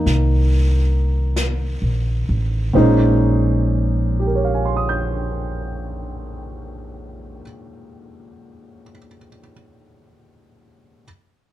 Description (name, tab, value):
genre	jazz ballad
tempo	42-48 BPM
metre	4/4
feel	swing 66% on 8ths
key	Bb dorian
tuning	A4 = 440 Hz
part	warm grand piano	accompaniment	0.0-11.1 s	Bb2 to G6	-21 LUFS	right 1 dB	none
part	upright bass	bass	0.1-7.4 s	A1 to C2	-19 LUFS	equal	none
part	jazz brush drum kit	drums	0.1-3.4 s	brushed snare drum, hi-hat, snare drum	-31 LUFS	left 1 dB	none
room	light reverb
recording	dark, warm production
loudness	-16 LUFS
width	side -14 dB against mid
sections	0.0-2.7 A section; 2.7-8.5 B section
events	slowing down 0.0-2.7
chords	0.0 F7sus4; 2.7 Bbm11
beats	0.05 1.35 | 2.75 4.19 5.64 7.08